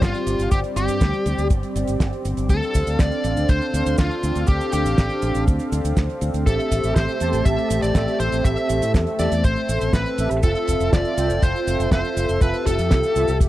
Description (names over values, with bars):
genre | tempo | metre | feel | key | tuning
italo disco | 121 BPM | 4/4 | straight | A minor | A4 = 440 Hz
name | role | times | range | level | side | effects
smooth overdriven lead guitar | melody | 0.0-13.4 s | F4 to E5 | -25 LUFS | left 1 dB | tape echo
warm analog pad | sustained chords | 0.0-13.5 s | G3 to F5 | -26 LUFS | equal | chorus, vintage 12-bit sampler grit
fingered electric bass with an envelope filter | bass | 0.0-13.5 s | F1 to A2 | -24 LUFS | equal | tube saturation
damped 70s drum kit | drums | 0.0-13.5 s | cabasa, hi-hat, snare drum | -26 LUFS | right 1 dB | studio reverb
kick drum | drums | 0.0-13.5 s | none | -18 LUFS | equal | studio reverb
analog synth brass | stabs | 6.5-13.3 s | C4 to A5 | -26 LUFS | right 3 dB | chorus
room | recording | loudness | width
small room ambience | dry, close 1970s-style studio recording | -18 LUFS | side -15 dB against mid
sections
0.0-13.5 A section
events
none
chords
0.0 Gsus4; 2.5 Dm7; 6.5 Am7; 10.4 Fmaj7